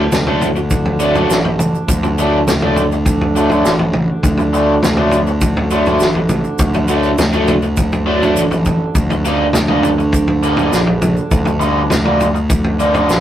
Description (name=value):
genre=psychedelic rock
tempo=102 BPM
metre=4/4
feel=straight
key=D major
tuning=A4 = 440 Hz
part: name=crunchy overdriven guitar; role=riff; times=0.0-13.1 s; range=D3 to Eb4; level=-16 LUFS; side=equal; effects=phaser
part: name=fuzz picked electric bass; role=bass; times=0.0-13.2 s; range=A1 to D2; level=-17 LUFS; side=equal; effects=overdrive
part: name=hand-pumped harmonium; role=drone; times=0.0-13.2 s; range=D2 to D3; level=-23 LUFS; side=right 3 dB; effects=none
part: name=vintage drum kit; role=drums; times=0.1-13.2 s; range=kick drum, snare drum, toms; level=-18 LUFS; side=equal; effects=none
part: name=maracas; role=percussion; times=0.1-13.2 s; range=none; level=-30 LUFS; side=right 4 dB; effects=none
room=light reverb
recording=rough rehearsal-room recording, tube saturation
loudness=-12 LUFS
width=side -11 dB against mid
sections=0.0-13.2 A section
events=none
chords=0.0 D; 9.0 Eb